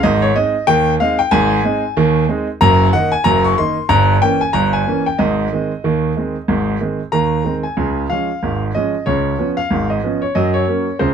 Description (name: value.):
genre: ragtime piano.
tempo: 93 BPM.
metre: 2/4.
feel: swing 59% on 16ths.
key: Db major.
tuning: A4 = 440 Hz.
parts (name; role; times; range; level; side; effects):
clear grand piano; solo; 0.0-11.1 s; Gb1 to Db6; -14 LUFS; right 1 dB; none.
room: light reverb.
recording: close, detailed microphones.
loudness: -14 LUFS.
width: side -7 dB against mid.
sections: 0.0-7.8 A section; 7.8-11.1 B section.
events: none.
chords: 0.0 Ab; 2.6 Ebm/Gb; 3.9 Gdim7; 5.2 Ab; 7.8 Db; 9.1 Db7; 10.4 Gb.